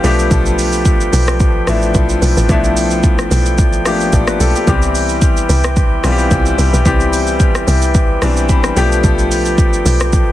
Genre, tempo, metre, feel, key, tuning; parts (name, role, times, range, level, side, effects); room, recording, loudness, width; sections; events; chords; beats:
amapiano; 110 BPM; 4/4; swing 55% on 16ths; C major; A4 = 439 Hz
bright concert grand piano; accompaniment; 0.0-10.3 s; E3 to B5; -16 LUFS; left 3 dB
mellow woodwind section; sustained chords; 0.0-10.3 s; F3 to G5; -21 LUFS; right 1 dB
woody log drum bass; bass; 0.0-10.3 s; A1 to C2; -16 LUFS; equal
deep house drum kit; drums; 0.0-10.3 s; hi-hat, kick drum, rim click, shaker; -15 LUFS; equal; vintage 12-bit sampler grit, soft clipping on snare
little or no reverb; dense, heavily limited modern master; -11 LUFS; side -14 dB against mid
0.0-10.3 A section
grand piano fill 0.0-0.3, 8.2-9.0
0.0 G9; 4.7 Cmaj7; 8.8 G9
| 0.31 0.86 1.40 1.95 | 2.49 3.04 3.58 4.13 | 4.67 5.22 5.76 6.31 | 6.86 7.40 7.95 8.49 | 9.04 9.58 10.13